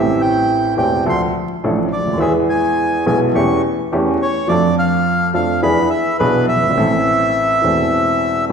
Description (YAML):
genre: tango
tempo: 105 BPM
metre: 4/4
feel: rubato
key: A minor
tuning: A4 = 440 Hz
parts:
  - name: bandoneon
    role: melody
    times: 0.0-8.4 s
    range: B4 to C#6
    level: -18 LUFS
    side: right 1 dB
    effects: none
  - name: warm baby grand piano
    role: accompaniment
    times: 0.0-8.5 s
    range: E1 to A4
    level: -16 LUFS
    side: equal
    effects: none
room: wet recital hall reverb, RT60 1.7 s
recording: recorded in a church or concert hall, vinyl crackle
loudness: -14 LUFS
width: side -6 dB against mid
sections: 0.0-8.5 A section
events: none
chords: 0.0 Am7; 1.1 Dm; 2.2 E; 3.4 A7/E; 4.5 Dm/F; 5.6 E7; 6.8 Am